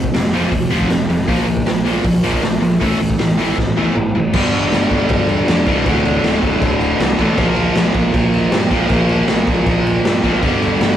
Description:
punk rock; 158 BPM; 4/4; straight; A4 = 439 Hz
distorted electric guitar; riff; 0.0-11.0 s; D2 to Bb3; -17 LUFS; equal; overdrive
fuzz fingered electric bass; bass; 0.0-11.0 s; D1 to G2; -20 LUFS; equal; overdrive
raw garage drum kit; drums; 0.0-10.9 s; crash cymbal, hi-hat, kick drum, snare drum, toms; -17 LUFS; equal
moderate small room reverb, RT60 0.6 s; rough rehearsal-room recording, warm saturation; -13 LUFS; side -10 dB against mid
0.0-4.3 A section; 4.3-11.0 B section
drum fill 3.6-4.3
0.0 F5; 1.3 Bb5; 2.8 A5; 4.3 G5; 5.9 D5; 7.4 Bb5; 10.4 G5

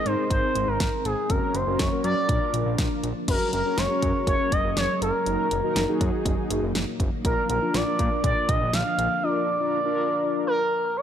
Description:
synth-pop; 121 BPM; 4/4; straight; A4 = 440 Hz
expressive portamento lead; melody; 0.0-11.0 s; Ab4 to F5; -25 LUFS; equal; chorus, analog delay
mellow synth brass; accompaniment; 0.0-10.6 s; Db4 to Bb4; -30 LUFS; left 1 dB; chorus
string machine, cellos; sustained chords; 0.0-11.0 s; F3 to Bb4; -31 LUFS; equal; ensemble chorus
fat analog bass; bass; 0.1-9.1 s; Gb1 to Bb2; -29 LUFS; equal
pop drum kit; drums; 0.1-9.1 s; crash cymbal, hi-hat, kick drum, snare drum; -27 LUFS; equal
light reverb; -22 LUFS; side -9 dB against mid
0.0-3.3 A section; 3.3-11.0 B section
0.0 Ab; 1.3 Gb; 2.3 Bb; 3.3 Gbadd9; 5.3 Ebm/Gb; 7.2 Bb

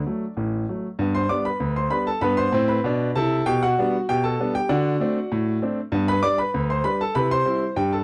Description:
ragtime piano; 97 BPM; 2/4; straight; G major; A4 = 440 Hz
clear concert grand piano; solo; 0.0-8.0 s; A1 to D6; -23 LUFS; equal
light reverb; dry, close 1970s-style studio recording; -23 LUFS; mono
1.0-8.0 A section
0.0 D; 1.0 G; 3.5 G/B; 4.7 D7; 5.9 G; 7.1 C

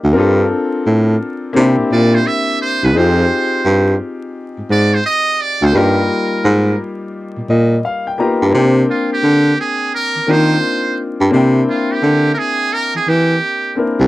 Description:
hip hop, jazz-hop; 86 BPM; 4/4; swing 65% on 16ths; C minor; A4 = 439 Hz
bright concert grand piano; accompaniment; 0.0-14.1 s; G3 to A#5; -18 LUFS; left 3 dB
clear baritone saxophone; bass; 0.0-14.1 s; C2 to E3; -12 LUFS; equal
trumpet with metal mute; melody; 1.9-13.8 s; F4 to E5; -17 LUFS; right 3 dB
little or no reverb; dry, close 1970s-style studio recording, vinyl crackle; -12 LUFS; side -17 dB against mid
0.0-8.5 A section; 8.5-14.1 B section
muted trumpet solo 0.0-8.5; grand piano fill 7.1-8.5
0.2 Gm11; 1.6 C7; 3.0 Fm9; 5.7 G7alt; 8.5 Cm9; 11.3 C9

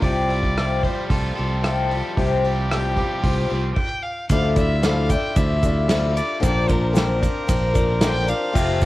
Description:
folk rock and heartland rock; 113 BPM; 4/4; straight; D minor; A4 = 438 Hz
rich fiddle; melody; 0.0-8.9 s; G4 to G5; -27 LUFS; equal; cassette tape
picked swing-style acoustic guitar; accompaniment; 0.0-8.9 s; Bb2 to Bb4; -24 LUFS; left 4 dB; cassette tape
crunchy overdriven guitar; riff; 0.0-3.8 s; C3 to F4; -29 LUFS; right 1 dB; cassette tape
fingered electric bass; bass; 0.0-8.9 s; F1 to D2; -22 LUFS; right 1 dB
unplugged drum kit; drums; 0.0-8.9 s; crash cymbal, hi-hat, kick drum, ride cymbal, rim click, snare drum; -23 LUFS; right 1 dB; cassette tape
hand-pumped harmonium; sustained chords; 4.3-8.9 s; D4 to D5; -30 LUFS; right 1 dB; cassette tape
tube shaker; percussion; 4.3-8.9 s; -41 LUFS; right 9 dB
light reverb, studio reverb; home recording on cassette; -18 LUFS; side -16 dB against mid
0.0-4.3 A section; 4.3-8.9 B section
stop 3.8-4.3
0.0 Csus4; 4.3 Dmadd9; 6.4 Bbadd9

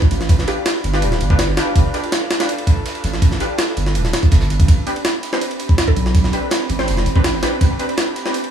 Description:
drum and bass, jungle; 164 BPM; 4/4; straight; A4 = 438 Hz
airy breathy pad; sustained chords; 0.0-8.5 s; C4 to B5; -26 LUFS; right 2 dB; chorus
jungle sampler-style drum kit; drums; 0.0-8.5 s; kick drum, ride cymbal, snare drum; -16 LUFS; right 1 dB; studio reverb
saturated sub bass; bass; 0.1-7.7 s; D1 to B1; -19 LUFS; right 1 dB
crunchy breakbeat drum kit; drums; 0.1-8.4 s; hi-hat, snare drum; -34 LUFS; right 4 dB
mallet-like synth pluck; melody; 0.5-1.0, 5.3-7.2 s; G4 to C5; -31 LUFS; equal
orchestra-hit-like synth stab; stabs; 0.5-8.3 s; C4 to C5; -24 LUFS; left 1 dB; built-in reverb, dub echo
digital ambience; -15 LUFS; side -9 dB against mid
0.0-8.5 A section
0.0 G7; 4.7 Am11

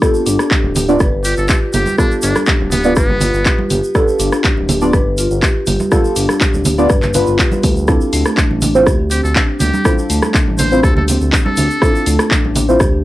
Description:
afro house; 122 BPM; 4/4; straight; A4 = 438 Hz
marimba with medium mallets; arpeggios; 0.0-12.9 s; A3 to B4; -19 LUFS; left 1 dB; sidechain pumping, cassette tape, tape echo
deep mellow chord stab; stabs; 0.0-12.8 s; B3 to D5; -17 LUFS; equal; chorus, phaser, sidechain pumping, cassette tape, tape echo
electronic kick drum; drums; 0.0-12.9 s; -15 LUFS; equal
house drum kit; drums; 0.0-12.9 s; handclaps, hi-hat, rim click; -19 LUFS; equal
tube shaker; percussion; 0.0-12.9 s; -27 LUFS; right 2 dB
smooth gliding synth bass; bass; 0.3-13.0 s; D1 to D2; -18 LUFS; equal; sidechain pumping
congas; percussion; 0.6-12.7 s; -21 LUFS; right 3 dB
trumpet with metal mute; melody; 1.2-3.7, 9.1-12.1 s; B3 to C5; -22 LUFS; equal; cassette tape, tape echo
light reverb; home recording on cassette; -11 LUFS; side -16 dB against mid
0.0-13.0 A section
0.0 G7; 7.9 Dm9

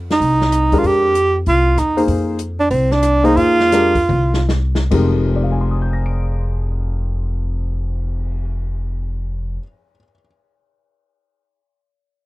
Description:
modal jazz; 136-194 BPM; 4/4; swing 64% on 8ths; F dorian; A4 = 437 Hz
upright bass; bass; 0.0-9.6 s; F1 to F2; -19 LUFS; equal
breathy tenor saxophone; melody; 0.1-4.5 s; C4 to G4; -14 LUFS; right 2 dB
open jazz drum kit; drums; 0.1-8.4 s; crash cymbal, cymbal swell, hi-hat, kick drum, rim click, snare drum, toms; -24 LUFS; left 1 dB
warm baby grand piano; accompaniment; 0.7-10.3 s; F2 to D7; -20 LUFS; left 3 dB
little or no reverb; dry, close 1970s-style studio recording; -15 LUFS; side -18 dB against mid
0.0-4.9 A section; 4.9-8.5 B section
slowing down 2.1-4.9; drum fill 4.1-4.9
0.0 Fm11

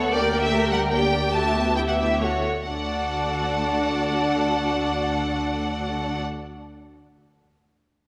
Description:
quick classical-period movement for string orchestra; 126-152 BPM; 3/4; straight; D major; A4 = 440 Hz
rich studio violin section; melody; 0.0-6.2 s; C#5 to A5; -30 LUFS; equal
rich studio violin section; second line; 0.0-6.2 s; F#4 to G5; -28 LUFS; equal
warm studio viola section; accompaniment; 0.0-6.2 s; G3 to Bb4; -30 LUFS; equal
rich studio cello section; bass; 0.0-6.2 s; D2; -34 LUFS; equal
rich studio double bass section; bass; 0.0-6.2 s; D2; -34 LUFS; equal
wet concert hall reverb, RT60 2.0 s; -23 LUFS; mono
0.0-2.7 A section; 2.7-5.4 B section
slowing down 0.0-2.7
0.1 Gm/D; 1.3 A7/D; 2.7 D

